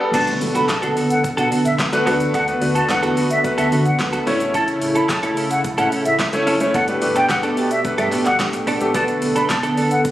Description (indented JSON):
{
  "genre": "dance-pop",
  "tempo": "109 BPM",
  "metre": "4/4",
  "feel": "straight",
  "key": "B minor",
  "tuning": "A4 = 441 Hz",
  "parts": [
    { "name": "clear concert grand piano", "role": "accompaniment", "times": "0.0-9.7 s", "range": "G3 to D5", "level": "-22 LUFS", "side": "left 1 dB", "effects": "sidechain pumping" },
    { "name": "warm analog pad", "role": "sustained chords", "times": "0.0-10.1 s", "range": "B2 to A4", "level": "-22 LUFS", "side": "equal", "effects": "chorus, sidechain pumping" },
    { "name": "direct-recorded clean electric guitar", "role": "riff", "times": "0.0-10.1 s", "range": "B3 to A4", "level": "-23 LUFS", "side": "right 2 dB", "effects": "analog chorus" },
    { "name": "concert flute", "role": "melody", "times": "0.1-10.0 s", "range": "E5 to B5", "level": "-22 LUFS", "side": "equal", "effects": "sidechain pumping, tape echo" },
    { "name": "sub bass with octave", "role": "bass", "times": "0.1-10.1 s", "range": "F#1 to D3", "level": "-28 LUFS", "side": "equal", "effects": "sidechain pumping" },
    { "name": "smooth R&B drum kit", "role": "drums", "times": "0.1-10.1 s", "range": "crash cymbal, handclaps, hi-hat, kick drum, shaker, snare drum", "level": "-26 LUFS", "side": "equal", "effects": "none" },
    { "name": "impact", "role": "sound effects", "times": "0.1-2.3 s", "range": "none", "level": "-30 LUFS", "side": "left 1 dB", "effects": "none" },
    { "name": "group handclap", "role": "percussion", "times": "0.7-9.6 s", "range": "none", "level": "-31 LUFS", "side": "right 1 dB", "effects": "none" }
  ],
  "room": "light reverb, digital ambience",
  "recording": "recorded on a phone in the room, studio ambience, compression, high-pass filter",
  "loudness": "-16 LUFS",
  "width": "side -13 dB against mid",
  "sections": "0.1-10.1 A section",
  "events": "drop 0.1-10.1; impact 0.1-2.3",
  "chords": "0.1 Bm7; 2.1 D6; 4.3 A; 6.7 Gadd9; 8.9 Bm7",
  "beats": "| 0.14 0.69 1.24 1.79 | 2.34 2.89 3.44 3.99 | 4.54 5.09 5.64 6.19 | 6.75 7.29 7.85 8.40 | 8.95 9.50 10.05"
}